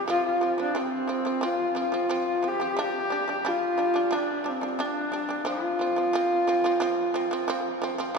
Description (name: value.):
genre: mongolian traditional, Mongolian folk.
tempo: 89 BPM.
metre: 4/4.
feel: straight.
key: unclear.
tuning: A4 = 441 Hz.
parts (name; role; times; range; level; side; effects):
rich horsehead fiddle; melody; 0.0-7.8 s; C4 to G4; -25 LUFS; equal; none.
shamisen; arpeggios; 0.0-8.2 s; C3 to D4; -30 LUFS; right 2 dB; none.
room: wet cathedral reverb, RT60 5.5 s.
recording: recorded in a church or concert hall.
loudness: -24 LUFS.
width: side -4 dB against mid.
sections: 0.0-8.2 A section.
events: none.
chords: 0.1 F5; 2.8 G5; 5.5 F5.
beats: | 0.07 0.74 1.42 2.09 | 2.77 3.44 4.11 4.79 | 5.46 6.13 6.80 7.48 | 8.15.